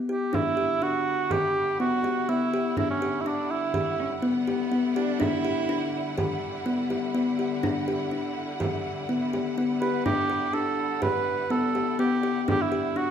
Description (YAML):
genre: contemporary instrumental, chamber music in an uneven meter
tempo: 124 BPM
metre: 5/4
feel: straight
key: E minor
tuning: A4 = 440 Hz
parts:
  - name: mellow cor anglais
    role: melody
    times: 0.1-4.2, 9.8-13.1 s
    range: C#4 to B4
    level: -27 LUFS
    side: right 4 dB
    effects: none
  - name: kalimba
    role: arpeggios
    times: 0.1-13.1 s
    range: B3 to G4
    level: -27 LUFS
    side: left 2 dB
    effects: none
  - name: clear symphonic string section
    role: sustained chords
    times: 0.3-13.1 s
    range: D3 to F#5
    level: -35 LUFS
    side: equal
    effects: none
  - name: frame drum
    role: percussion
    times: 0.3-12.7 s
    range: none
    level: -34 LUFS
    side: right 1 dB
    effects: none
  - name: dark cello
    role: second line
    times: 4.0-6.2 s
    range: B3 to E4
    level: -31 LUFS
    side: right 3 dB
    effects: none
room: moderate recital hall reverb, RT60 1.5 s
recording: minimal, uncompressed stereo recording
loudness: -24 LUFS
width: side -8 dB against mid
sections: 0.3-13.1 A section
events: none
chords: 0.3 Em9